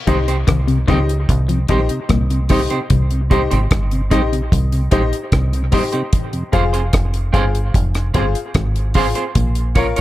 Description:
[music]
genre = dub reggae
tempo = 74 BPM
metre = 4/4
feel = straight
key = unclear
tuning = A4 = 440 Hz
[part]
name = clean electric guitar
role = accompaniment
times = 0.1-10.0 s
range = C4 to Db5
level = -24 LUFS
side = right 6 dB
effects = dub echo
[part]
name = mellow tonewheel organ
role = accompaniment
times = 0.1-6.4 s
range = F2 to Eb4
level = -24 LUFS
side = equal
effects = chorus vibrato, slow rotary speaker
[part]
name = semi-hollow electric guitar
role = arpeggios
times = 0.1-3.0 s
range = Bb2 to F3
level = -23 LUFS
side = left 5 dB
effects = dub echo
[part]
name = bright upright piano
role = stabs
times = 0.1-10.0 s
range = Eb4 to F5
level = -23 LUFS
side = left 5 dB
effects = dub echo
[part]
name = deep dub fingered electric bass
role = bass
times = 0.1-10.0 s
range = F1 to Db2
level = -18 LUFS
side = equal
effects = none
[part]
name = deep reggae drum kit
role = drums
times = 0.1-10.0 s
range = hi-hat, kick drum, rim click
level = -18 LUFS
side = equal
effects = none
[sound]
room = light reverb, small room ambience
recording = none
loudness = -14 LUFS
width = side -15 dB against mid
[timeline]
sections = 0.0-10.0 A section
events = none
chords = 0.0 Cm; 6.1 Fm; 9.4 Bbm

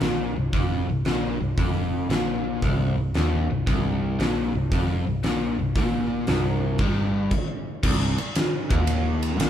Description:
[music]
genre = blues rock power trio and southern rock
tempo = 115 BPM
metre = 4/4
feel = swing 67% on 8ths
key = C minor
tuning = A4 = 445 Hz
[part]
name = crunchy overdriven guitar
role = riff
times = 0.0-9.5 s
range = C2 to Bb2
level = -25 LUFS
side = left 1 dB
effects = none
[part]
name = vintage muted picked electric bass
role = bass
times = 0.0-9.5 s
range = C1 to Bb1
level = -28 LUFS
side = equal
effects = none
[part]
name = big rock drum kit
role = drums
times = 0.0-9.5 s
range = crash cymbal, hi-hat, kick drum, ride cymbal, snare drum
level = -25 LUFS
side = equal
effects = none
[sound]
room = moderate large studio reverb, RT60 1.2 s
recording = band playing live in one room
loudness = -22 LUFS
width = side -10 dB against mid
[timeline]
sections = 0.0-7.8 A section; 7.8-9.5 B section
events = stop 7.3-7.8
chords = 0.0 C5; 7.8 Cm

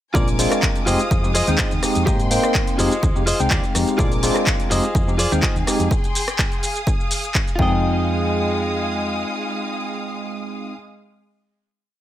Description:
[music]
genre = filtered disco house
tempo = 125 BPM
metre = 4/4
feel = straight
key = F dorian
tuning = A4 = 439 Hz
[part]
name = tine electric piano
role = accompaniment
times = 0.1-10.7 s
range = Ab3 to G5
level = -23 LUFS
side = equal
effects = phaser, sidechain pumping
[part]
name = clear symphonic violin section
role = sustained chords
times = 0.1-10.7 s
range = Ab3 to Eb6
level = -27 LUFS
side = left 1 dB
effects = sidechain pumping
[part]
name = direct-recorded clean electric guitar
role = riff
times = 0.1-10.8 s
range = F4 to Eb5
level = -25 LUFS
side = equal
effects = sidechain pumping
[part]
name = hollow-body short-scale fingered electric bass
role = bass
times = 0.1-9.2 s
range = F1 to Ab2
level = -23 LUFS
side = equal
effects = sidechain pumping
[part]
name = electronic kick drum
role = drums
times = 0.1-7.7 s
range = none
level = -21 LUFS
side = equal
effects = none
[part]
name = punchy analog drum machine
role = drums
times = 0.2-7.6 s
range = handclaps, hi-hat, rim click, shaker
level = -24 LUFS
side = equal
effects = sidechain pumping on perc, sidechain pumping on hats
[sound]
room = light reverb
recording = none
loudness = -17 LUFS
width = side -12 dB against mid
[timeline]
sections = 0.1-7.8 drop; 7.8-11.7 final hit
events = drop 0.1-7.8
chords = 0.1 Bb7; 0.9 Fm7; 2.1 Abmaj7; 2.8 Fm7; 4.0 Bb7; 4.7 Fm7; 5.9 Abmaj7; 6.6 Fm7

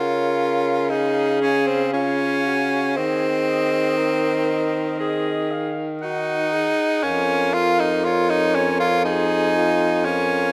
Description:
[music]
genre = classical, lyrical piece for single-reed quartet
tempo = 59 BPM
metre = 4/4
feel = rubato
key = Db major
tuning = A4 = 440 Hz
[part]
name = warm clarinet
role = melody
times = 0.0-10.5 s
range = Db5 to Ab5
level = -32 LUFS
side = equal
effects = none
[part]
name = warm alto saxophone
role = second line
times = 0.0-10.5 s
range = F4 to Bb4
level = -28 LUFS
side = equal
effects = none
[part]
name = clear tenor saxophone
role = accompaniment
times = 0.0-10.5 s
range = C4 to F4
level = -23 LUFS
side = equal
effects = none
[part]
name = mellow baritone saxophone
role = bass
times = 0.0-10.5 s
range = F2 to Eb3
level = -26 LUFS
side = equal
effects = none
[sound]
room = moderate scoring stage reverb, RT60 2.0 s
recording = close, detailed microphones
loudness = -21 LUFS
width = mono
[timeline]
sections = 0.0-10.5 A section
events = none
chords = 0.0 Db; 3.0 Ab7/Eb; 7.0 Db/F

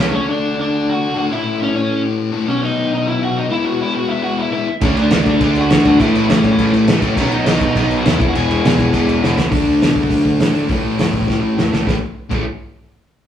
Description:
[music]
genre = punk rock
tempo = 204 BPM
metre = 4/4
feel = straight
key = A major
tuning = A4 = 440 Hz
[part]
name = distorted electric guitar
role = riff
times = 0.0-0.1, 4.8-12.4 s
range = E2 to D4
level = -19 LUFS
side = right 3 dB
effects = distortion
[part]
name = distorted electric guitar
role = riff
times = 0.0-0.1, 4.8-9.5 s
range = E2 to D4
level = -20 LUFS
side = equal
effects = distortion
[part]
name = sludgy distorted guitar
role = riff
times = 0.0-12.4 s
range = A2 to A4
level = -19 LUFS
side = left 5 dB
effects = overdrive
[part]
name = fuzz picked electric bass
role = bass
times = 0.0-0.1, 4.8-12.5 s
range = E1 to B2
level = -23 LUFS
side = equal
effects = overdrive
[part]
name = overdriven semi-hollow guitar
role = melody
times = 0.1-9.2 s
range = C#4 to G#5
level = -20 LUFS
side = equal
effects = none
[part]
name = loose indie drum kit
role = drums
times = 4.8-12.4 s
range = crash cymbal, hi-hat, kick drum, snare drum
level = -18 LUFS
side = equal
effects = none
[sound]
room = moderate stone room reverb, RT60 0.9 s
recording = rough rehearsal-room recording, tube saturation, small room ambience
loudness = -13 LUFS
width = side -10 dB against mid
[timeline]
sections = 0.1-9.5 A section; 9.5-11.9 B section; 11.9-13.1 C section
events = drum fill 9.2, 11.3-11.9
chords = 0.1 D; 1.3 A; 2.5 B; 3.5 E; 4.8 D; 6.0 A; 7.2 B; 8.2 E; 9.5 D; 10.7 A

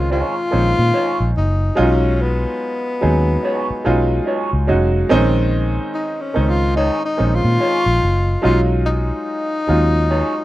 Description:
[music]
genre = R&B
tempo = 72 BPM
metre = 4/4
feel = swing 59% on 16ths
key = Bb minor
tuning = A4 = 440 Hz
[part]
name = breathy tenor saxophone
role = melody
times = 0.0-10.4 s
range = B3 to F4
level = -20 LUFS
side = left 2 dB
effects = none
[part]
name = clear baby grand piano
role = accompaniment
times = 0.0-10.4 s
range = Eb3 to C5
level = -20 LUFS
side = right 1 dB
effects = none
[part]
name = vintage muted fingered electric bass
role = bass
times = 0.0-10.2 s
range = F1 to Bb2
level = -17 LUFS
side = equal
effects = none
[part]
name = electric guitar through a small old amp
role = second line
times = 0.1-10.3 s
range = Eb4 to Db5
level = -22 LUFS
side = right 2 dB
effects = wah
[sound]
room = little or no reverb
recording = rough home demo mix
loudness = -15 LUFS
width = side -16 dB against mid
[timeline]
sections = 0.0-10.4 A section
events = none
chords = 0.0 Bbm11; 1.8 B69; 5.1 Bbm11; 8.4 B69

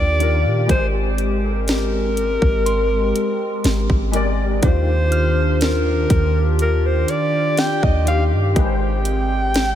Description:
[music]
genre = contemporary R&B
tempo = 61 BPM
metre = 4/4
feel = straight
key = Eb major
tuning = A4 = 438 Hz
[part]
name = mellow alto saxophone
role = melody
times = 0.0-9.8 s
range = Bb4 to G5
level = -22 LUFS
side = equal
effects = ping-pong delay
[part]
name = dark grand piano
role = accompaniment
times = 0.0-9.8 s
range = Eb3 to D5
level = -26 LUFS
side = left 4 dB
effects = ensemble chorus
[part]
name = hollow soft pad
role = sustained chords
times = 0.0-9.8 s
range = Eb3 to G4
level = -24 LUFS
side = equal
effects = chorus
[part]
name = warm 808-style bass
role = bass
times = 0.0-9.8 s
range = Ab1 to Bb2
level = -20 LUFS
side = equal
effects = none
[part]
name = soft synth bell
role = texture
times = 0.0-7.6 s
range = G5 to F6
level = -35 LUFS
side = right 2 dB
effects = chorus, ping-pong delay
[part]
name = trap drum kit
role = drums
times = 0.2-9.8 s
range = hi-hat, kick drum, snare drum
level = -21 LUFS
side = equal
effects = none
[sound]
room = light reverb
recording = none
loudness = -16 LUFS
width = side -10 dB against mid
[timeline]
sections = 0.0-9.8 A section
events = none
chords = 0.0 Ebmaj9; 0.7 Abmaj9; 4.6 Ebmaj9; 8.6 Abmaj9

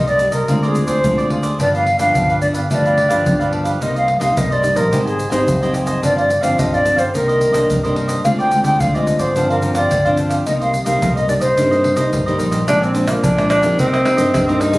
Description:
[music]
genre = samba and choro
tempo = 108 BPM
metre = 4/4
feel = straight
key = C minor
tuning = A4 = 439 Hz
[part]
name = wooden flute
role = melody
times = 0.0-12.4 s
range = Ab4 to G5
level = -17 LUFS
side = equal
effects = none
[part]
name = cavaquinho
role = accompaniment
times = 0.0-14.8 s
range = D4 to Ab5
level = -24 LUFS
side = right 2 dB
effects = none
[part]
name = nylon-string guitar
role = accompaniment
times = 0.0-14.8 s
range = F2 to Ab4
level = -21 LUFS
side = left 1 dB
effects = none
[part]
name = fingered electric bass with an envelope filter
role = bass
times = 0.0-14.8 s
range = F#1 to G2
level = -21 LUFS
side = equal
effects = none
[part]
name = egg shaker, surdo, pandeiro and tamborim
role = percussion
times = 0.1-14.8 s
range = none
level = -24 LUFS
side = equal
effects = none
[part]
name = breathy tenor saxophone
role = second line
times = 12.7-14.8 s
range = Bb3 to Eb4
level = -16 LUFS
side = equal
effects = none
[sound]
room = moderate studio ambience, RT60 0.5 s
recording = recorded on a phone in the room, studio reverb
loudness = -14 LUFS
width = side -20 dB against mid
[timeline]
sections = 0.0-12.7 A section; 12.7-14.8 B section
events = tenor saxophone solo 12.7-14.8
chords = 0.5 Dm7b5; 1.6 G7; 3.8 Cm7; 4.9 Abmaj7; 6.0 G7sus4; 7.1 Cm9; 8.2 Dm7b5; 9.4 G7sus4; 10.5 Cm7; 12.7 Bb7; 13.8 Cm7

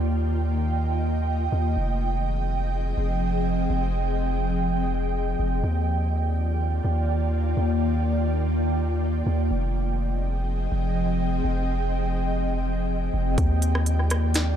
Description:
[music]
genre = hip hop, atmospheric cloud-rap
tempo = 124 BPM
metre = 4/4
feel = half-time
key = Eb major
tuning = A4 = 438 Hz
[part]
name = ethereal airy pad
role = sustained chords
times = 0.0-14.6 s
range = Eb3 to G5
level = -27 LUFS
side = equal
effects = ensemble chorus, built-in reverb, sidechain pumping
[part]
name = long sustained 808-style bass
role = bass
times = 0.0-14.5 s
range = F1 to Eb2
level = -24 LUFS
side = equal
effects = none
[part]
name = trap drum kit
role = drums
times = 13.4-14.5 s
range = hi-hat, kick drum, rim click, snare drum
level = -26 LUFS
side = equal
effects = analog delay
[sound]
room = little or no reverb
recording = echo-heavy mix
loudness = -22 LUFS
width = side -9 dB against mid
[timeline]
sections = 0.0-13.4 A section; 13.4-14.6 B section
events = none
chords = 0.0 Eb; 1.8 Fm9; 5.6 Ebmaj7; 9.5 Fm9; 13.4 Ebmaj7

